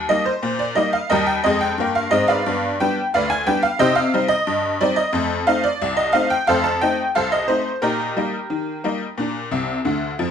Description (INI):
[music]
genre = ragtime piano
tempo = 89 BPM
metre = 2/4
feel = straight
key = Eb major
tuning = A4 = 438 Hz
[part]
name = tack piano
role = solo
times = 0.0-10.3 s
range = C2 to A5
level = -17 LUFS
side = equal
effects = none
[sound]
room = moderate studio reverb, RT60 0.7 s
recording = dark, warm production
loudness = -17 LUFS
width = side -8 dB against mid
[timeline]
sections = 0.0-10.3 A section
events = honky-tonk piano fill 9.5-10.3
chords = 0.0 Eb; 2.5 G; 3.8 Cm; 5.1 F7; 7.8 Eb/Bb; 9.2 Bb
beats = 0.44 | 1.11 1.78 | 2.46 3.13 | 3.80 4.47 | 5.14 5.81 | 6.48 7.15 | 7.83 8.51 | 9.18 9.85